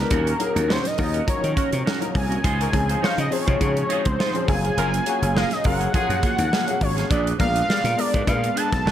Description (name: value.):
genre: polished 1980s jazz-funk pop.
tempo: 103 BPM.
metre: 4/4.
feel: swing 54% on 16ths.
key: unclear.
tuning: A4 = 440 Hz.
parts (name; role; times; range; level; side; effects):
fat analog lead; melody; 0.0-8.9 s; Bb4 to A5; -25 LUFS; equal; none.
bright baby grand piano; accompaniment; 0.0-8.9 s; F3 to B4; -27 LUFS; left 3 dB; ensemble chorus.
clean electric guitar; riff; 0.0-8.9 s; Bb3 to D5; -30 LUFS; right 4 dB; wide subtle chorus.
gritty slap bass; bass; 0.0-8.9 s; E1 to Eb3; -24 LUFS; equal; overdrive.
modern studio drum kit; drums; 0.1-8.9 s; hi-hat, kick drum, snare drum; -25 LUFS; equal; none.
mellow horn section; second line; 2.6-6.2 s; Bb3 to C5; -31 LUFS; left 2 dB; none.
room: light reverb, small room ambience.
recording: none.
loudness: -19 LUFS.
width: side -11 dB against mid.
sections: 0.0-8.9 A section.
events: none.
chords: 0.1 Ebm7; 2.4 Dbmaj9; 4.5 Gbmaj9; 7.1 Bb7b9.